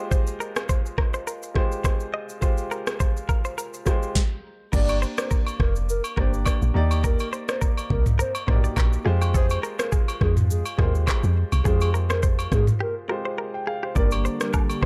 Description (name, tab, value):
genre	afrobeats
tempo	104 BPM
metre	4/4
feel	swing 55% on 16ths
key	unclear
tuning	A4 = 440 Hz
part	clear grand piano	accompaniment	0.0-14.9 s	Ab3 to G5	-34 LUFS	equal	none
part	direct-recorded clean electric guitar	riff	0.0-14.9 s	G4 to Eb5	-35 LUFS	equal	tape echo
part	afro-pop drum kit	drums	0.1-14.9 s	crash cymbal, handclaps, kick drum, rim click, shaker, snare drum, toms	-25 LUFS	equal	none
part	hollow clarinet-like synth lead	melody	4.7-14.9 s	Ab4 to D5	-34 LUFS	equal	chorus, tape echo
part	deep log drum bass	bass	4.7-14.9 s	F1 to Ab2	-24 LUFS	equal	none
part	agogo bells and woodblock	percussion	4.9-14.8 s	none	-36 LUFS	equal	none
part	warm analog pad	sustained chords	14.0-14.9 s	D3 to G4	-33 LUFS	equal	chorus
room	digital ambience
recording	dark, warm production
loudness	-24 LUFS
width	mono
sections	0.0-4.7 A section; 4.7-14.0 B section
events	break 12.8-14.0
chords	0.0 Fmadd9; 4.7 Gm; 6.7 Ebmaj7; 9.1 Fmadd9; 14.0 Gm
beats	| 0.12 0.69 1.27 1.84 | 2.42 3.00 3.58 4.15 | 4.73 5.31 5.88 6.46 | 7.04 7.62 8.19 8.77 | 9.35 9.92 10.50 11.08 | 11.65 12.23 12.81 13.38 | 13.96 14.54